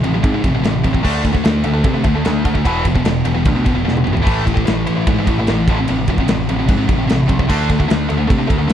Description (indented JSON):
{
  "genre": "heavy metal",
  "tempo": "149 BPM",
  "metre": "4/4",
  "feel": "straight",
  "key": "unclear",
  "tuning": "A4 = 442 Hz",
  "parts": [
    { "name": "heavy high-gain guitar", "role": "riff", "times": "0.0-8.7 s", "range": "E2 to D4", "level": "-17 LUFS", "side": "equal", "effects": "distortion" },
    { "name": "growling picked electric bass", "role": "bass", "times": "0.0-8.7 s", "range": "E1 to C3", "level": "-20 LUFS", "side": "equal", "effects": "overdrive" },
    { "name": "modern studio drum kit", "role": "drums", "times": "0.0-8.7 s", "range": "crash cymbal, kick drum, ride cymbal, snare drum, toms", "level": "-18 LUFS", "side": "equal", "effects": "none" }
  ],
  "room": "light reverb",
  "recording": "dark, warm production",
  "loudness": "-13 LUFS",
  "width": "side -10 dB against mid",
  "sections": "0.0-8.7 A section",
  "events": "drum fill 3.9-4.3",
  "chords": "0.0 F/A; 1.0 D5; 2.7 E5; 4.3 A5; 5.7 F/A; 7.5 D5"
}